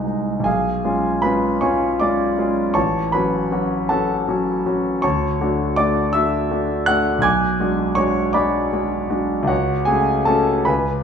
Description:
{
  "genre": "classical, romantic character piece for solo piano",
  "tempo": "53 BPM (dotted quarters)",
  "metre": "6/8",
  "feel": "uneven beats, rubato",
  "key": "F# minor from 5.0 s",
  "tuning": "A4 = 439 Hz",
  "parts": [
    { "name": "clear concert grand piano", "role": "solo", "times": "0.0-11.0 s", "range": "A1 to G#6", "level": "-17 LUFS", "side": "equal", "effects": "none" }
  ],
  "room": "wet recital hall reverb, RT60 1.8 s",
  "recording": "minimal, uncompressed stereo recording",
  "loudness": "-17 LUFS",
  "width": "side -7 dB against mid",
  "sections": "0.0-11.0 A section",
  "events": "none",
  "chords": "0.5 C#7/B; 2.8 F#m/A; 5.0 Dmaj7; 7.2 G#m7b5/B; 9.5 F#m/C#",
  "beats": "| 0.46 1.62 | 2.76 3.90 | 5.04 6.15 | 7.24 8.35 | 9.50 10.68"
}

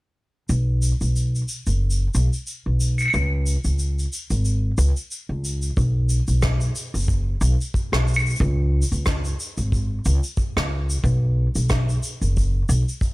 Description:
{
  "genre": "folktronica",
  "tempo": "91 BPM",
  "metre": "4/4",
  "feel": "swing 56% on 16ths",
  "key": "unclear",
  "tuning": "A4 = 440 Hz",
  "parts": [
    { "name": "upright bass", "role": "bass", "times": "0.5-12.8 s", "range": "F#1 to C#2", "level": "-20 LUFS", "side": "equal", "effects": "none" },
    { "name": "shaker, claves and rim click", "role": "drums", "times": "0.5-13.1 s", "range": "none", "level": "-28 LUFS", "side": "equal", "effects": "none" },
    { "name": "kick drum", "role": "drums", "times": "5.8-13.1 s", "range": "none", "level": "-24 LUFS", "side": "equal", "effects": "none" }
  ],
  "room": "little or no reverb",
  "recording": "none",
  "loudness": "-20 LUFS",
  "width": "side -20 dB against mid",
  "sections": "0.5-5.8 A section; 5.8-13.1 B section",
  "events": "filter sweep on upright bass 0.5-5.8",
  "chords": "none",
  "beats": "| 0.49 1.15 1.81 2.47 | 3.13 3.79 4.45 5.11 | 5.77 6.43 7.09 7.75 | 8.41 9.06 9.72 10.38 | 11.04 11.70 12.36 13.02"
}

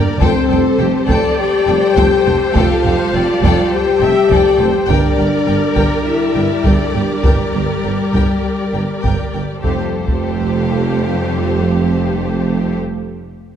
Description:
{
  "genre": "cinematic, epic orchestral film score",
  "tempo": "102 BPM",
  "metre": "4/4",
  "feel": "straight",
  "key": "F major",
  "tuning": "A4 = 440 Hz",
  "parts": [
    { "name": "rich chamber violin section", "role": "melody", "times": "0.0-12.8 s", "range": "G4 to A5", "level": "-27 LUFS", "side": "left 5 dB", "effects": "none" },
    { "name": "warm symphonic viola section", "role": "accompaniment", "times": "0.0-12.8 s", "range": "A3 to E5", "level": "-23 LUFS", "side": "right 2 dB", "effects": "none" },
    { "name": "mellow French horn section", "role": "sustained chords", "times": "0.0-12.8 s", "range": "F3 to A4", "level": "-17 LUFS", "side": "left 4 dB", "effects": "none" },
    { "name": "rich symphonic string section", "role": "sustained chords", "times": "0.0-12.7 s", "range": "G3 to D5", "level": "-23 LUFS", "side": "right 1 dB", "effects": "none" },
    { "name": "warm tuba", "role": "bass", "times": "0.0-12.7 s", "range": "F1 to G1", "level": "-22 LUFS", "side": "right 4 dB", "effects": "none" },
    { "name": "rich studio violin section", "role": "second line", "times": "0.2-12.7 s", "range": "G4 to G5", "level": "-25 LUFS", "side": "left 4 dB", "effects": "none" },
    { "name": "rich symphonic double bass section", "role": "bass", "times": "0.2-12.8 s", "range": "F1 to G1", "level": "-23 LUFS", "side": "right 4 dB", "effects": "none" },
    { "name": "warm symphonic cello section", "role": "bass", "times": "0.2-12.8 s", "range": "F2 to G2", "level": "-23 LUFS", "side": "right 3 dB", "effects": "none" },
    { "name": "taiko ensemble", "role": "drums", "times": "0.2-10.8 s", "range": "none", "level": "-19 LUFS", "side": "equal", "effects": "none" }
  ],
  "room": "moderate concert hall reverb, RT60 2.2 s",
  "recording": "dark, warm production",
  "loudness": "-12 LUFS",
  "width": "side -8 dB against mid",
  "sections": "0.0-9.6 A section; 9.6-12.0 B section",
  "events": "drum fill 0.0",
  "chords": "0.2 Fadd9; 4.9 Gm; 9.6 Fadd9",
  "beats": "| 0.22 0.80 1.39 1.97 | 2.55 3.14 3.72 4.31 | 4.89 5.47 6.06 6.65 | 7.24 7.84 8.44 9.04 | 9.64 10.22 10.81 11.40"
}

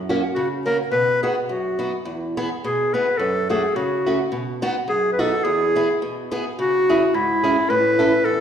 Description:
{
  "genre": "alpine folk, alpine dance band",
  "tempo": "106 BPM",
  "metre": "2/4",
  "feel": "swing 54% on 8ths",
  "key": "E major",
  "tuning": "A4 = 441 Hz",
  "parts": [
    { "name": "picked old ladder-braced acoustic guitar", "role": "accompaniment", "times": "0.0-8.4 s", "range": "E2 to A4", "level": "-23 LUFS", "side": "right 1 dB", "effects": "none" },
    { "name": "clear clarinet", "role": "melody", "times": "0.3-8.4 s", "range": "E4 to B4", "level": "-20 LUFS", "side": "left 1 dB", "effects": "none" }
  ],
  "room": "wet recital hall reverb, RT60 1.4 s",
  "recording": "heard from further back in the room",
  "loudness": "-18 LUFS",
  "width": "side -8 dB against mid",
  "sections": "0.0-6.6 A section; 6.6-8.4 B section",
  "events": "none",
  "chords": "0.0 F#; 0.9 B; 2.1 E; 3.2 F#m; 4.3 B; 5.5 E; 6.6 C#m; 7.7 A",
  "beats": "0.35 | 0.92 1.49 | 2.06 2.63 | 3.20 3.76 | 4.33 4.89 | 5.45 6.02 | 6.59 7.15 | 7.71 8.26"
}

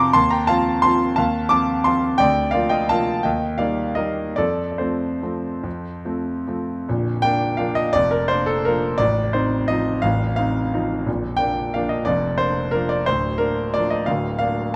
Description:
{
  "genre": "classical, piano waltz",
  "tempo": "137-189 BPM",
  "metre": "3/4",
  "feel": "rubato",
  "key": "Bb major",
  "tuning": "A4 = 440 Hz",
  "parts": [
    { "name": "clear concert grand piano", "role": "solo", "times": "0.0-14.8 s", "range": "A0 to D6", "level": "-21 LUFS", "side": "equal", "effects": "none" }
  ],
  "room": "moderate recital hall reverb, RT60 1.5 s",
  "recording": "close, detailed microphones",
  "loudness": "-21 LUFS",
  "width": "mono",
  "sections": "0.0-6.9 A section; 6.9-14.8 B section",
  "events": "none",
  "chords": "0.1 F7/Eb; 2.2 Bb/D; 3.3 Eb; 4.4 F; 6.9 Bb; 9.0 F7/A; 11.1 Bb; 13.1 Bb/D",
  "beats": "| 0.15 0.49 0.84 | 1.18 1.51 1.87 | 2.21 2.55 2.90 | 3.25 3.60 3.98 | 4.38 4.81 5.24 | 5.65 6.05 6.47 | 6.87 7.23 7.59 | 7.94 8.29 8.65 | 9.00 9.34 9.69 | 10.03 10.37 10.72 | 11.07 11.40 11.74 | 12.07 12.40 12.74 | 13.07 13.40 13.74 | 14.07 14.40 14.75"
}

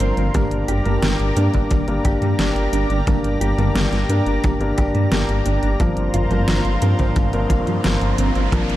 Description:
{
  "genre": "synthwave",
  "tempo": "88 BPM",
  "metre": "4/4",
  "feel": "straight",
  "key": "G minor",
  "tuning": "A4 = 441 Hz",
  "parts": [
    { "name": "lush unison pad", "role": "sustained chords", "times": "0.0-8.8 s", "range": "F4 to C6", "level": "-27 LUFS", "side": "equal", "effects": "chorus, sidechain pumping" },
    { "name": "mellow electric guitar", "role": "riff", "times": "0.0-8.6 s", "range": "F3 to G4", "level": "-27 LUFS", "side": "right 2 dB", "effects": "wide subtle chorus, digital delay" },
    { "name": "dark grand piano", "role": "stabs", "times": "0.0-8.8 s", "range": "G2 to Bb4", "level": "-23 LUFS", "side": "left 1 dB", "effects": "digital delay" },
    { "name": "dark detuned saw bass", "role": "bass", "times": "0.0-8.8 s", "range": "G1 to G2", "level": "-21 LUFS", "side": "equal", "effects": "sidechain pumping" },
    { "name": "pop drum kit", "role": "drums", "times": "0.0-8.8 s", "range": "hi-hat, snare drum, toms", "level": "-24 LUFS", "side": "equal", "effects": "overdrive" },
    { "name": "kick drum", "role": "drums", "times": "0.3-8.7 s", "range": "none", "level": "-22 LUFS", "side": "equal", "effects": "none" },
    { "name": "riser", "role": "sound effects", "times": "7.1-8.8 s", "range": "none", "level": "-32 LUFS", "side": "left 1 dB", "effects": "none" }
  ],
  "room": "light reverb, studio reverb",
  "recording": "dark, warm production",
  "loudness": "-16 LUFS",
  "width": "side -14 dB against mid",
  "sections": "0.0-8.8 A section",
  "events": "riser 7.1-8.8",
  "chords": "0.3 Gm; 5.8 Fsus4/G",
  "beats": "| 0.35 1.03 1.71 2.39 | 3.07 3.75 4.44 5.12 | 5.80 6.48 7.16 7.85 | 8.53"
}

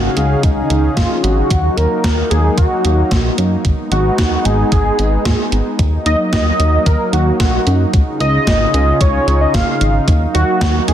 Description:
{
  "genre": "synthwave",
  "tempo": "112 BPM",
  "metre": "4/4",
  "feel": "straight",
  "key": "Eb minor",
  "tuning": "A4 = 441 Hz",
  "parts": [
    { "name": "wide unison lead", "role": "melody", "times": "0.0-10.9 s", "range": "Eb4 to F5", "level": "-17 LUFS", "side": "equal", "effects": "digital delay" },
    { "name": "warm analog pad", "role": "sustained chords", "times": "0.0-10.9 s", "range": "Db3 to F5", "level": "-20 LUFS", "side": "equal", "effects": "chorus, sidechain pumping" },
    { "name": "chorused synth bass", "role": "bass", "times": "0.0-10.9 s", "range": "Ab1 to Ab2", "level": "-16 LUFS", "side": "equal", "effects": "none" },
    { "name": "gated 80s digital drum machine", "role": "drums", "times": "0.2-10.9 s", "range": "hi-hat, snare drum", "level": "-21 LUFS", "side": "right 1 dB", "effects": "gated reverb, gated reverb snare" },
    { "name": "electronic kick drum", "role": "drums", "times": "0.4-10.7 s", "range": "none", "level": "-16 LUFS", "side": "equal", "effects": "none" }
  ],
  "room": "light reverb",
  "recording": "dense, heavily limited modern master",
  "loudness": "-12 LUFS",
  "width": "side -10 dB against mid",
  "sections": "0.0-10.9 A section",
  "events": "none",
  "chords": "0.0 Dbadd9; 1.5 Ebm; 3.6 Abm; 5.8 Ebm; 7.9 Dbadd9; 10.1 Ebm",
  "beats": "0.43 0.97 | 1.50 2.04 2.58 3.11 | 3.65 4.18 4.72 5.25 | 5.79 6.33 6.86 7.40 | 7.93 8.47 9.01 9.54 | 10.08 10.61"
}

